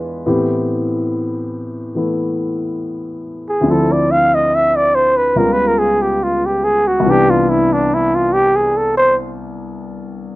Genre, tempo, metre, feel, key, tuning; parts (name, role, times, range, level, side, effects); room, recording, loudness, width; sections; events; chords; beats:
jazz ballad; 71 BPM; 4/4; swing 68% on 8ths; C major; A4 = 440 Hz
warm concert grand piano; accompaniment; 0.0-10.4 s; C2 to B4; -18 LUFS; left 1 dB
trumpet with bucket mute; melody; 3.5-9.2 s; D4 to F5; -13 LUFS; right 1 dB
little or no reverb; recorded outdoors, with no room sound; -13 LUFS; side -18 dB against mid
0.0-10.4 A section
muted trumpet solo 0.0-10.4
0.2 Am9; 3.7 Dm9; 5.3 Db7#11; 7.0 Cmaj9
| 0.25 1.10 1.96 2.81 | 3.66 4.50 5.35 6.20 | 7.04 7.89 8.73 9.58